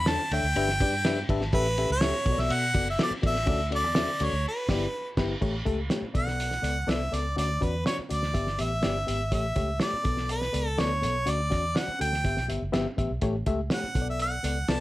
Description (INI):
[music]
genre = uptempo 1960s-style soul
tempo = 123 BPM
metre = 4/4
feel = straight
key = B minor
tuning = A4 = 440 Hz
[part]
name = clear harmonica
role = melody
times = 0.0-14.8 s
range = B4 to B5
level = -29 LUFS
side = equal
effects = none
[part]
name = reed electric piano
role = accompaniment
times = 0.0-14.8 s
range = G2 to A5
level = -32 LUFS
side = left 4 dB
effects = overdrive
[part]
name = vintage muted fingered electric bass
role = bass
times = 0.0-14.8 s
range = F#1 to B2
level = -30 LUFS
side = equal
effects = none
[part]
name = cloth-damped thuddy drum kit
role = drums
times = 0.1-14.8 s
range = crash cymbal, hi-hat, kick drum, ride cymbal, snare drum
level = -30 LUFS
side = right 1 dB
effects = none
[sound]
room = light reverb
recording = none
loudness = -25 LUFS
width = side -17 dB against mid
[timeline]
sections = 0.0-5.4 A section; 5.4-14.8 B section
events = reed electric piano fill 0.8-1.5; band accent 4.4-5.4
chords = 0.0 Dmaj7(no3); 0.6 G6; 1.5 A7; 2.3 Bm7; 3.5 Dmaj7; 4.4 G6; 5.4 A7; 6.2 Bm7; 7.4 Dmaj7; 8.3 G6; 9.3 A7; 10.1 Bm7; 11.3 Dmaj7; 12.2 G6; 13.2 A7; 14.0 Bm7